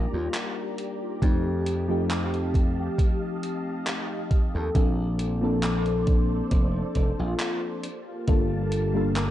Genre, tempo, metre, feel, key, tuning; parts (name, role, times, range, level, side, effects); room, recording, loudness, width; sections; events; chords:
vaporwave; 68 BPM; 4/4; straight; A4 = 440 Hz
mellow FM electric piano; accompaniment; 0.0-9.3 s; F3 to Bb4; -28 LUFS; left 2 dB; analog chorus, tape echo
soft string machine; sustained chords; 0.0-9.3 s; Bb3 to Bb5; -36 LUFS; right 1 dB; phaser, ensemble chorus
slap bass; bass; 0.0-9.3 s; F1 to F2; -27 LUFS; right 1 dB
warm velvety synth lead; melody; 0.1-9.3 s; F4 to Bb4; -36 LUFS; left 1 dB; chorus, tape echo
gated 80s digital drum machine; drums; 0.3-9.3 s; handclaps, hi-hat; -33 LUFS; equal; gated reverb, overdrive
electronic kick drum; drums; 1.2-8.5 s; -23 LUFS; equal; overdrive
light reverb, digital ambience; dark, warm production, nothing above 10.7 kHz; -23 LUFS; side -13 dB against mid
0.0-9.3 A section
0.0 Ebmaj7; 1.2 F9; 4.8 Bbmaj9; 7.8 Gm9